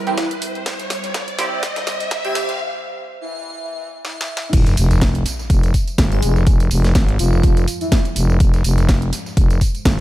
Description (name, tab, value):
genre	bass house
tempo	124 BPM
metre	4/4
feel	swing 56% on 16ths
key	F harmonic minor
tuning	A4 = 438 Hz
part	dark analog pad	sustained chords	0.0-10.0 s	F3 to E5	-34 LUFS	equal	chorus, phaser, sidechain pumping
part	riser and sub drop	sound effects	0.0-6.5 s	none	-26 LUFS	equal	none
part	airy dreamy lead	melody	0.1-8.0 s	E4 to Ab4	-27 LUFS	right 1 dB	chorus, dub echo
part	band-passed chord stab	stabs	0.1-2.6 s	C4 to G4	-27 LUFS	right 3 dB	phaser, wide subtle chorus, sidechain pumping, dub echo
part	house drum kit	drums	0.1-10.0 s	crash cymbal, hi-hat, snare drum, tambourine	-25 LUFS	right 1 dB	high-pass filter on hats, high-pass filter on snare, high-pass filter on cymbals, high-pass filter on perc, high-pass filter on room
part	dusty soul sampler-style drum kit	drums	0.2-10.0 s	hi-hat, snare drum	-34 LUFS	left 1 dB	none
part	electronic kick drum	drums	0.2-10.0 s	none	-16 LUFS	equal	high-pass filter on kick, high-pass filter on room
part	growling FM bass	bass	4.5-10.0 s	F1 to Ab1	-16 LUFS	equal	overdrive, sidechain pumping
room	digital ambience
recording	high-pass filter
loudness	-15 LUFS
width	side -15 dB against mid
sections	0.0-4.5 A section; 4.5-10.0 B section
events	build-up 0.0-4.5; drum fill 0.0-2.6, 4.0-4.5; riser 0.0-2.6; filter sweep on analog synth pad 0.0-4.5; break 2.6-4.5; drop 4.5-10.0; impact 4.5-6.5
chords	0.0 C; 4.5 Fm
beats	0.18 | 0.66 1.14 1.63 2.11 | 2.60 3.08 3.56 4.05 | 4.53 5.01 5.50 5.98 | 6.47 6.95 7.43 7.92 | 8.40 8.89 9.37 9.85